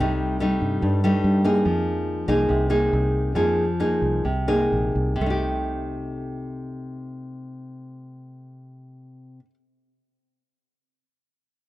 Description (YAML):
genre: bossa nova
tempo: 122-144 BPM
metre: 4/4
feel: straight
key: C minor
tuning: A4 = 438 Hz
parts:
  - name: nylon-string guitar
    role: accompaniment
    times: 0.0-9.5 s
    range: G2 to Ab4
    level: -23 LUFS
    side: equal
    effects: none
  - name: fingered electric bass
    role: bass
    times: 0.0-9.4 s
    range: Bb1 to G2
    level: -26 LUFS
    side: right 1 dB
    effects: none
room: light reverb, small room ambience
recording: dry, close 1970s-style studio recording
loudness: -20 LUFS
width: side -16 dB against mid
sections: 0.0-5.2 A section; 5.2-9.1 B section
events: slowing down 1.7-5.2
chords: 0.0 Cm6; 1.7 Fm7; 5.2 Cm6